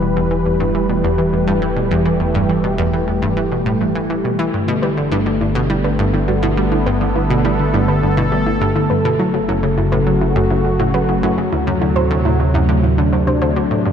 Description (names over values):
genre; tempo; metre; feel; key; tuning
ambient, sequencer-driven space music; 103 BPM; 4/4; straight; E dorian; A4 = 440 Hz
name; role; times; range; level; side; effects
sweeping resonant pad; sustained chords; 0.0-13.9 s; C3 to B4; -17 LUFS; equal; chorus
analog pluck; riff; 0.0-13.9 s; D2 to G3; -19 LUFS; equal; chorus, analog delay
round analog bass; bass; 0.0-13.9 s; E1 to D2; -23 LUFS; equal; none
soft round pluck; arpeggios; 4.7-13.7 s; D4 to C5; -24 LUFS; moving between left 4 dB and right 7 dB; chorus, auto-pan, analog delay
room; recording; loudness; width
moderate plate reverb, RT60 3.1 s; dark, warm production; -14 LUFS; side -8 dB against mid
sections
0.0-13.9 A section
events
none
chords
0.0 Em; 4.5 Gadd9; 9.2 F#m; 11.5 D7